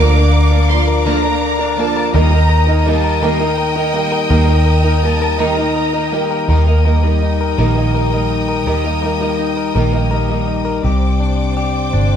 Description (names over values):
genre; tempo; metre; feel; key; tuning
six-eight pop ballad; 55 BPM (dotted quarters); 6/8; straight; unclear; A4 = 440 Hz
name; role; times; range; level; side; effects
warm studio violin section; second line; 0.0-6.5 s; G5 to D6; -23 LUFS; right 1 dB; none
direct-recorded clean electric guitar; accompaniment; 0.0-12.2 s; C3 to Bb4; -18 LUFS; left 6 dB; none
bright studio string section; sustained chords; 0.0-12.2 s; Bb4 to Eb6; -23 LUFS; left 1 dB; none
picked steel-string acoustic guitar; arpeggios; 0.0-10.9 s; D3 to Bb4; -20 LUFS; right 6 dB; none
vintage muted fingered electric bass; bass; 0.0-12.2 s; G1 to Eb2; -15 LUFS; equal; none
room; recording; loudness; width
moderate large studio reverb, RT60 1.2 s; band playing live in one room; -12 LUFS; side -8 dB against mid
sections
0.0-6.5 A section; 6.5-10.8 B section; 10.8-12.2 C section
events
none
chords
0.0 Bb/D; 2.1 Eb; 10.8 Csus2